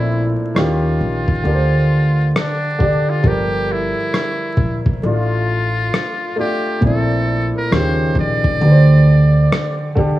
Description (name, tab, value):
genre	lo-fi hip hop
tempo	67 BPM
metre	4/4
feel	swing 61% on 16ths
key	unclear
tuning	A4 = 444 Hz
part	trumpet with metal mute	melody	0.0-9.9 s	D4 to D5	-22 LUFS	equal	low-pass filter, analog delay
part	warm upright piano	accompaniment	0.0-10.2 s	Bb2 to D5	-19 LUFS	equal	cassette tape, low-pass filter
part	upright bass	bass	0.0-9.5 s	G1 to Eb2	-16 LUFS	equal	none
part	trip hop sampler-style drum kit	drums	0.6-10.2 s	kick drum, rim click	-19 LUFS	equal	vintage 12-bit sampler grit
room	studio ambience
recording	vinyl crackle, small room ambience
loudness	-14 LUFS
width	side -15 dB against mid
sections	0.0-10.2 A section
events	break 0.0-10.2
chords	0.0 Bbmaj9#11; 0.6 Eb9; 1.4 D7sus4; 3.2 Gm9; 5.0 F6/A; 6.8 Bbmaj9#11; 7.7 Eb9; 8.6 D7sus4